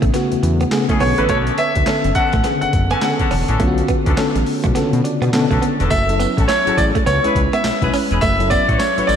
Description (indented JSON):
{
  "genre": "R&B, new jack swing",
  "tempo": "104 BPM",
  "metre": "4/4",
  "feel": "swing 61% on 16ths",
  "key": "F# minor",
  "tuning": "A4 = 442 Hz",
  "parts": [
    { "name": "FM electric piano with auto-pan", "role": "accompaniment", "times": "0.0-9.2 s", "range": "C#3 to A5", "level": "-20 LUFS", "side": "left 2 dB", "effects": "none" },
    { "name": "direct-recorded clean electric guitar", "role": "riff", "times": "0.0-9.0 s", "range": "A3 to C#4", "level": "-24 LUFS", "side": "right 4 dB", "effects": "lush chorus" },
    { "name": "fat analog bass", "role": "bass", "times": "0.0-9.2 s", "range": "E1 to B2", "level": "-20 LUFS", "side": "equal", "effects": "none" },
    { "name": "boom bap sampler-style drum kit", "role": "drums", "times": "0.0-9.2 s", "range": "handclaps, hi-hat, kick drum, snare drum, tambourine", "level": "-22 LUFS", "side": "equal", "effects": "overdrive" },
    { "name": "mellow horn section", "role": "stabs", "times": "0.9-9.1 s", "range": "A3 to C#5", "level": "-27 LUFS", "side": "left 3 dB", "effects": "analog delay" },
    { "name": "clear baby grand piano", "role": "melody", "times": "1.0-9.2 s", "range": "B4 to G#5", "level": "-19 LUFS", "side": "right 1 dB", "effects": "analog delay" }
  ],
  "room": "moderate lush hall reverb, RT60 2.0 s",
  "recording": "dreamy mix soaked in reverb",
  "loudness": "-14 LUFS",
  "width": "side -8 dB against mid",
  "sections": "0.0-5.9 A section; 5.9-9.2 B section",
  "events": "FM electric piano fill 4.8-5.9",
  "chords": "0.0 Amaj9; 1.0 Bm9; 5.9 F#m7; 7.1 C#m7; 8.2 F#m7"
}